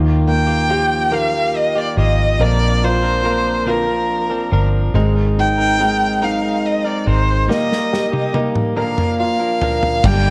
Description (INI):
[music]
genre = six-eight pop ballad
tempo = 47 BPM (dotted quarters)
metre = 6/8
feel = straight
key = Eb major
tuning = A4 = 440 Hz
[part]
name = warm concert grand piano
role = accompaniment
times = 0.0-10.3 s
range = Eb3 to Bb4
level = -23 LUFS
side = equal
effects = none
[part]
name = direct-recorded clean electric guitar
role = arpeggios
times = 0.0-10.3 s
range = G2 to Bb4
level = -27 LUFS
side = equal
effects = tape echo
[part]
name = vintage muted fingered electric bass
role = bass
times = 0.0-10.3 s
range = G1 to Eb2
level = -20 LUFS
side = equal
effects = none
[part]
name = clear violin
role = melody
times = 0.3-10.3 s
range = Bb4 to G5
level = -21 LUFS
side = equal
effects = none
[part]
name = natural country drum kit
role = drums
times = 7.5-10.2 s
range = crash cymbal, kick drum, snare drum, toms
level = -23 LUFS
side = equal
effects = none
[sound]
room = light reverb, studio reverb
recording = worn, warbling old tape, cassette tape, warbly pitch drift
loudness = -17 LUFS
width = mono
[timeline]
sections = 0.0-10.0 A section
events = drum fill 7.5-10.0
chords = 0.0 Ebadd9; 2.4 Bbadd9; 5.0 Abadd9; 7.5 Eb/Bb; 8.8 Bb